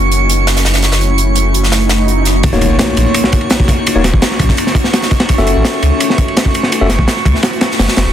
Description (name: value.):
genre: drum and bass, jungle.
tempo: 168 BPM.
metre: 4/4.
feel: straight.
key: unclear.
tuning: A4 = 441 Hz.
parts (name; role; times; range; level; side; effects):
granular cloud pad; sustained chords; 0.0-8.1 s; A3 to Gb4; -18 LUFS; equal; built-in reverb, vintage 12-bit sampler grit.
saturated sub bass; bass; 0.0-8.1 s; Eb1 to Db2; -14 LUFS; equal; none.
drifting glass-harmonics texture; texture; 0.0-8.1 s; Db6; -21 LUFS; right 6 dB; chorus, built-in reverb.
big rock drum kit; drums; 0.1-8.1 s; hi-hat, snare drum; -19 LUFS; right 1 dB; high-pass filter on hats, high-pass filter on snare, high-pass filter on room.
swell and impact; sound effects; 1.9-3.9 s; none; -22 LUFS; right 1 dB; none.
crunchy breakbeat drum kit; drums; 2.4-8.1 s; hi-hat, kick drum, ride cymbal, snare drum; -13 LUFS; equal; none.
tine electric piano; stabs; 2.5-6.9 s; Bb3 to Fb5; -17 LUFS; left 4 dB; dub echo.
room: small room ambience.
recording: dense, heavily limited modern master.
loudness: -10 LUFS.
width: side -10 dB against mid.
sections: 0.0-2.4 A section; 2.4-8.1 B section.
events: filter sweep on ambient pad 0.0-2.4; swell 1.9-2.4; drop 2.4-8.1; impact 2.4-3.9.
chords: 0.0 Gbm7; 2.4 Ebm7; 5.3 Gbm7.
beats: 0.29 0.65 | 1.01 1.36 1.72 2.08 | 2.44 2.79 3.15 3.51 | 3.86 4.22 4.58 4.93 | 5.29 5.65 6.01 6.36 | 6.72 7.08 7.43 7.79.